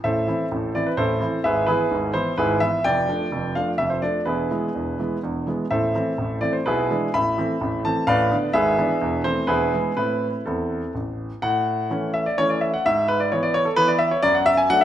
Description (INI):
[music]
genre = classical-period piano sonatina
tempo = 127 BPM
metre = 3/4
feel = straight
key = A minor, A major from 11.4 s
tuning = A4 = 443 Hz
[part]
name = clear concert grand piano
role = solo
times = 0.0-14.8 s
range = E1 to B5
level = -19 LUFS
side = equal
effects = none
[sound]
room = wet recital hall reverb, RT60 1.5 s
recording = minimal, uncompressed stereo recording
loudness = -20 LUFS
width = side -11 dB against mid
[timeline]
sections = 0.0-11.4 A section; 11.4-14.8 A section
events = none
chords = 0.0 Am; 1.4 E/G#; 2.8 Dm/F; 4.3 E; 5.7 Am; 6.7 E7/B; 7.1 Am; 8.1 Bm7b5/A; 8.5 E7/G#; 9.0 Am/E; 9.5 E; 10.0 Am; 11.4 A; 12.8 E/G#; 14.2 D/F#